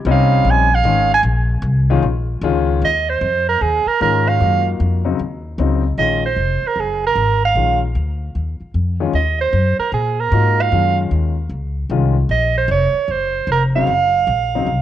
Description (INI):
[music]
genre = modal jazz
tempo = 152 BPM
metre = 4/4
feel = swing 65% on 8ths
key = Eb dorian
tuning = A4 = 444 Hz
[part]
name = mellow soprano saxophone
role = melody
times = 0.1-14.8 s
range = Ab4 to Ab5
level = -16 LUFS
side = right 6 dB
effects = cassette tape
[part]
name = warm baby grand piano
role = accompaniment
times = 0.1-14.7 s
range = Db3 to Ab4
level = -21 LUFS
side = left 9 dB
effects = none
[part]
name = upright bass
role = bass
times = 0.1-14.8 s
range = F1 to Bb2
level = -18 LUFS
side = left 1 dB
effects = none
[sound]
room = light reverb, small room reverb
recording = home recording on cassette, nothing above 10.4 kHz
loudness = -14 LUFS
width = side -11 dB against mid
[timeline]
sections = 0.0-2.8 A section; 2.8-14.8 B section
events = soprano saxophone solo 0.0-2.8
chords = 0.0 Bbm11; 2.8 Ebm9